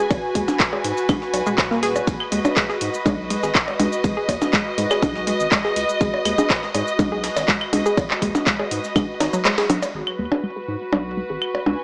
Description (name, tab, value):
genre	minimal techno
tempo	122 BPM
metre	4/4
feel	straight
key	G# minor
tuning	A4 = 439 Hz
part	hollow square pluck	riff	0.0-11.7 s	F#3 to G#4	-27 LUFS	equal	chorus, sidechain pumping, dub echo
part	dark studio string section	texture	0.0-11.8 s	F#4 to G#5	-28 LUFS	equal	sidechain pumping
part	saturated sub bass	bass	0.1-11.7 s	D#1 to G#2	-33 LUFS	equal	sidechain pumping
part	booming analog drum machine	drums	0.1-9.9 s	cabasa, handclaps, hi-hat	-26 LUFS	equal	none
part	breakbeat sampler-style drum kit	drums	0.1-9.9 s	hi-hat, ride cymbal, snare drum	-36 LUFS	equal	none
part	electronic kick drum	drums	0.1-9.1 s	none	-25 LUFS	equal	none
part	percussion blips and claves	percussion	0.1-11.8 s	none	-26 LUFS	equal	overdrive
room	light reverb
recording	small speaker sound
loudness	-21 LUFS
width	mono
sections	0.0-9.9 A section; 9.9-11.8 B section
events	kick drops out 9.5-9.9; band accent 9.5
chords	0.0 G#m7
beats	| 0.11 0.60 1.09 1.58 | 2.07 2.57 3.06 3.55 | 4.04 4.53 5.03 5.52 | 6.01 6.50 6.99 7.48 | 7.98 8.47 8.96 9.45 | 9.94 10.44 10.93 11.42